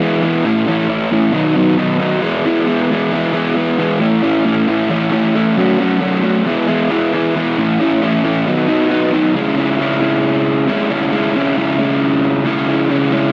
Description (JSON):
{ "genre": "rock", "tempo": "135 BPM", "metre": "4/4", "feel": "straight", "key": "unclear", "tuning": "A4 = 440 Hz", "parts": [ { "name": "raw garage guitar", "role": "solo", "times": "0.0-13.3 s", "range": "A2 to F#4", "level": "-15 LUFS", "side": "equal", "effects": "overdrive" } ], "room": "light reverb", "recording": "dry, close 1970s-style studio recording", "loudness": "-15 LUFS", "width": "mono", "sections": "0.0-9.3 A section; 9.3-13.3 B section", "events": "none", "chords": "0.4 A; 1.3 B; 2.2 E; 4.0 A; 5.6 F#m; 6.5 E; 7.6 A; 8.5 B; 9.3 C#m" }